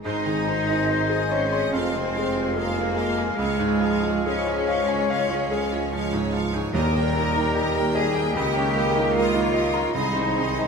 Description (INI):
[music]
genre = classical, romantic movement for piano and orchestra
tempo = 73 BPM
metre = 4/4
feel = rubato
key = Ab major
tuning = A4 = 442 Hz
[part]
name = clear concert grand piano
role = melody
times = 0.0-10.7 s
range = C2 to C6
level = -27 LUFS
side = right 1 dB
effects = none
[part]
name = concert flute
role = second line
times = 0.0-10.7 s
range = Ab4 to Bb5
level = -30 LUFS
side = left 4 dB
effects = none
[part]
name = rich symphonic viola section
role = accompaniment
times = 0.0-10.7 s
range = Eb4 to C5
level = -35 LUFS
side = left 1 dB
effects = none
[part]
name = mellow French horn section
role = sustained chords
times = 0.0-10.7 s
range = Ab3 to Bb4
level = -32 LUFS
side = equal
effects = none
[part]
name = mellow trombone section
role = sustained chords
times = 0.0-10.7 s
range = Eb3 to C4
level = -32 LUFS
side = right 1 dB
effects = none
[part]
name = bright symphonic cello section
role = bass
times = 0.0-10.7 s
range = Ab3 to Bb4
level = -30 LUFS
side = left 1 dB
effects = none
[part]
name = mellow tuba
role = bass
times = 0.0-10.7 s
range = F1 to Eb2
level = -33 LUFS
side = right 4 dB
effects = none
[part]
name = rich symphonic double bass section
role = bass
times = 0.0-10.7 s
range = F1 to Eb2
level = -31 LUFS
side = right 1 dB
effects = none
[part]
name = rich symphonic violin section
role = melody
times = 0.1-10.7 s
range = Db5 to Db6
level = -38 LUFS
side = equal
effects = none
[part]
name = clear symphonic violin section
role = second line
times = 0.1-10.7 s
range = C5 to G5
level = -35 LUFS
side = right 1 dB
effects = none
[part]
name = warm clarinet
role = second line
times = 0.1-10.7 s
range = C5 to F5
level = -32 LUFS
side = left 3 dB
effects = none
[part]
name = warm bassoon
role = accompaniment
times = 0.1-10.7 s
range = G3 to Bb3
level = -33 LUFS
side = right 1 dB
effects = none
[part]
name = timpani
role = percussion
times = 6.7-7.9 s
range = Eb3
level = -30 LUFS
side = left 1 dB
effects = none
[sound]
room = wet stone room reverb, RT60 1.0 s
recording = minimal, uncompressed stereo recording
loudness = -20 LUFS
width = side -5 dB against mid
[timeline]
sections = 0.0-10.7 A section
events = none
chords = 0.0 Ab; 1.7 Fm; 3.4 Db; 6.7 Eb; 8.4 Eb7/Db; 9.9 Ab/C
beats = | 0.04 0.87 1.72 2.55 | 3.37 4.25 5.09 5.92 | 6.73 7.54 8.35 9.15 | 9.95